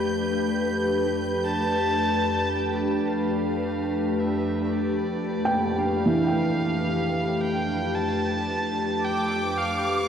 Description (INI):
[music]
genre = ambient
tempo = 56 BPM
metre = 3/4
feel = straight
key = unclear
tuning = A4 = 440 Hz
[part]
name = glassy FM pad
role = sustained chords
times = 0.0-10.1 s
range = F2 to B4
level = -24 LUFS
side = left 1 dB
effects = ensemble chorus, built-in reverb
[part]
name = felt-muted upright piano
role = arpeggios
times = 0.0-10.1 s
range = E3 to G5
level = -26 LUFS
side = right 1 dB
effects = diffuse ambient delay
[part]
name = clear studio violin section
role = texture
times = 0.0-2.6, 9.0-10.1 s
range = D6 to G6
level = -32 LUFS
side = right 2 dB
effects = none
[part]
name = clear electric violin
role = melody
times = 1.5-10.1 s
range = D5 to A5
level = -29 LUFS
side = right 1 dB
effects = diffuse ambient delay
[sound]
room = wet lush hall reverb, RT60 2.8 s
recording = dreamy mix soaked in reverb, cassette tape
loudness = -22 LUFS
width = side -8 dB against mid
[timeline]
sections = 0.0-2.5 A section; 2.5-10.1 B section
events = fade-in on electric violin 2.5-10.1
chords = 0.0 G13/F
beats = 0.34 1.44 | 2.54 3.64 4.73 | 5.81 6.89 7.96 | 9.04